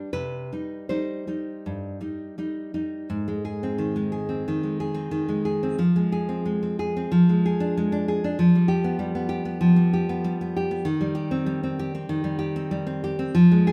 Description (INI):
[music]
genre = romantic piece for solo classical guitar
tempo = 76-100 BPM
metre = 4/4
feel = rubato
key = C minor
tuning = A4 = 440 Hz
[part]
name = nylon-string guitar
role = solo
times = 0.0-13.7 s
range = G2 to C5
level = -24 LUFS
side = equal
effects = none
[sound]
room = light reverb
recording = none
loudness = -25 LUFS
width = mono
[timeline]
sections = 0.0-3.1 A section; 3.1-13.7 B section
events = none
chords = 0.1 Cm; 3.1 Ab; 5.8 Fm; 7.1 Ddim/F; 8.4 G7/F; 10.9 Cm/Eb